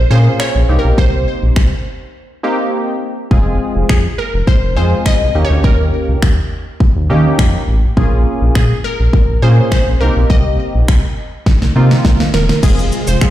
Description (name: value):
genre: dance-pop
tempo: 103 BPM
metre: 4/4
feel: straight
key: F minor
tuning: A4 = 438 Hz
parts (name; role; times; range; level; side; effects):
- glassy wavetable pluck; melody; 0.0-13.3 s; Ab4 to Eb5; -20 LUFS; equal; chorus, ping-pong delay
- round analog bass; bass; 0.0-13.3 s; E1 to Eb3; -13 LUFS; equal; sidechain pumping
- warm analog keys; accompaniment; 0.1-13.3 s; Ab3 to Ab4; -20 LUFS; equal; chorus, sidechain pumping
- pop drum kit; drums; 0.4-13.3 s; crash cymbal, finger snaps, kick drum, shaker, snare drum; -13 LUFS; equal; none
- string machine, violins; sustained chords; 12.6-13.3 s; C3 to F4; -20 LUFS; right 1 dB; ensemble chorus, sidechain pumping
room: light reverb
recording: played on a big sound system in a bare room, large studio reverb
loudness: -11 LUFS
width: side -13 dB against mid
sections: 0.0-12.6 A section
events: break 2.1-3.3; drum fill 11.5-12.6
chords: 0.0 Bbm7; 0.7 Cm7; 3.3 Fm; 5.3 Eb7; 8.0 Bbm7; 10.0 Cm7; 12.6 Fm